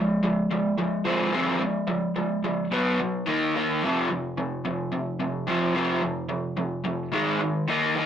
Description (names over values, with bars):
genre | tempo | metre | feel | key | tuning
rock | 109 BPM | 4/4 | straight | F minor | A4 = 440 Hz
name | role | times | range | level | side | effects
raw garage guitar | solo | 0.0-8.1 s | F2 to Eb4 | -23 LUFS | equal | overdrive
room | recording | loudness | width
moderate small room reverb, RT60 0.5 s | rough rehearsal-room recording | -24 LUFS | side -9 dB against mid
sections
0.0-8.1 A section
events
none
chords
0.0 Fm; 2.7 B5; 3.3 Eb5; 3.8 F5; 7.1 Ab5